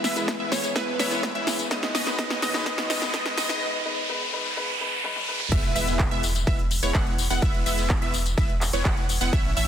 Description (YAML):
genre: EDM, festival progressive house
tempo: 126 BPM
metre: 4/4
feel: straight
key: E major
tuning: A4 = 444 Hz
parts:
  - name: warm studio string section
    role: sustained chords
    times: 0.0-3.6 s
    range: D#3 to B4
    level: -38 LUFS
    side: left 1 dB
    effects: sidechain pumping
  - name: wide unison pluck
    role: arpeggios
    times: 0.0-9.7 s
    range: C#5 to F#5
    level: -30 LUFS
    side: right 2 dB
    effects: phaser, sidechain pumping, ping-pong delay
  - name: supersaw chords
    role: riff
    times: 0.0-9.7 s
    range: G#3 to F#5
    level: -30 LUFS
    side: equal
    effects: sidechain pumping, low-pass filter, ping-pong delay
  - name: big-room dance drum kit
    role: drums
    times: 0.0-9.7 s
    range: crash cymbal, handclaps, hi-hat, snare drum, tambourine, toms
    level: -29 LUFS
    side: left 1 dB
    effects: overdrive
  - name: riser and impact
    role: sound effects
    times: 0.0-7.4 s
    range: none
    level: -31 LUFS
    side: equal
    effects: none
  - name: felt-muted upright piano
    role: accompaniment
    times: 0.2-5.4 s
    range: G#3 to B4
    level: -34 LUFS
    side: left 3 dB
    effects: sidechain pumping, ping-pong delay
  - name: electronic kick drum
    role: drums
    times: 0.3-9.4 s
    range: none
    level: -24 LUFS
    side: equal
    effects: overdrive, high-pass filter on kick
  - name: glassy wavetable pluck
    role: melody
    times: 0.5-3.6 s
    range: B4 to D#5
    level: -32 LUFS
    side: equal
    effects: chorus, ping-pong delay
  - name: saturated sub bass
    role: bass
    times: 5.5-9.7 s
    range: E1 to A1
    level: -28 LUFS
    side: equal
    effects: sidechain pumping
room: moderate lush hall reverb, RT60 2.0 s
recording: dense, heavily limited modern master, high-pass filter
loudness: -22 LUFS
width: side -9 dB against mid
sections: 0.0-5.5 A section; 5.5-9.7 B section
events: build-up 0.0-5.5; drum fill 0.0-3.6, 5.0-5.5; riser 0.0-5.5; filter sweep 0.0-5.5; drop 5.5-9.7; impact 5.5-7.4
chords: 0.0 E; 1.7 Badd9; 5.5 E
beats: 0.28 0.76 1.23 | 1.71 2.19 2.66 3.14 | 3.61 4.09 4.57 5.04 | 5.52 6.00 6.47 6.95 | 7.42 7.90 8.38 8.85 | 9.33